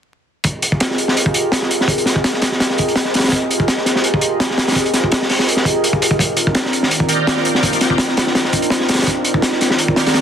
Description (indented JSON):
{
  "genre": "drum and bass, jungle",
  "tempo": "167 BPM",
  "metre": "4/4",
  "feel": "swing 54% on 16ths",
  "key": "F dorian",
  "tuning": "A4 = 440 Hz",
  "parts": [
    { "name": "warbly tape-like pad", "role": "sustained chords", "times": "0.4-10.2 s", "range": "Eb3 to Eb5", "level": "-19 LUFS", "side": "right 1 dB", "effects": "chorus, built-in reverb" },
    { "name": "crunchy breakbeat drum kit", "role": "drums", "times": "0.4-10.2 s", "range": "hi-hat, kick drum, snare drum", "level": "-15 LUFS", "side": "equal", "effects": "high-pass filter on kick, high-pass filter on hats, high-pass filter on snare, high-pass filter on room" },
    { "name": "bright tonewheel organ", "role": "stabs", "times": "7.1-10.2 s", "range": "Bb3 to G4", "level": "-23 LUFS", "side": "equal", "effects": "overdrive, chorus vibrato, slow rotary speaker, dub echo" }
  ],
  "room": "moderate lush hall reverb, RT60 1.9 s, small room ambience",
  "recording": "dense, heavily limited modern master, vinyl crackle",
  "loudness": "-14 LUFS",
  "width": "side -8 dB against mid",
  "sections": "0.4-10.2 A section",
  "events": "none",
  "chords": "0.4 Fm11; 6.2 Cm11"
}